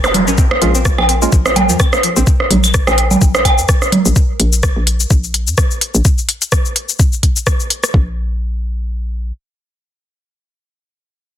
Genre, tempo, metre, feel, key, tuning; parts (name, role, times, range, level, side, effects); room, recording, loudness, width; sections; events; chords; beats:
minimal techno; 127 BPM; 4/4; swing 56% on 16ths; Bb minor; A4 = 440 Hz
string-like resonator pluck; riff; 0.0-2.2 s; F3 to Db4; -22 LUFS; equal; chorus, sidechain pumping, digital delay
hollow knocking FM bass; bass; 0.0-9.3 s; F1 to F2; -17 LUFS; equal; sidechain pumping
minimal click drum kit; drums; 0.0-7.9 s; cabasa, hi-hat, rim click; -17 LUFS; left 2 dB; soft clipping on snare
electronic rim click, claves, congas and woodblock; percussion; 0.0-4.0 s; -14 LUFS; right 2 dB; soft clipping on snare
pulsing gated texture; texture; 0.0-4.2 s; Bb4; -30 LUFS; left 2 dB
electronic kick drum; drums; 0.4-8.1 s; -13 LUFS; equal
percussive organ stab; stabs; 0.6-1.3 s; Ab3 to F4; -21 LUFS; right 5 dB; chorus, dub echo
digital ambience; dense, heavily limited modern master; -11 LUFS; side -11 dB against mid
0.0-7.9 A section; 7.9-11.4 B section
drop 0.0-7.9
0.0 Bb5; 7.9 N.C.
| 0.38 0.85 1.32 1.80 | 2.27 2.74 3.21 3.69 | 4.16 4.63 5.11 5.58 | 6.05 6.52 7.00 7.47 | 7.94 8.41 8.88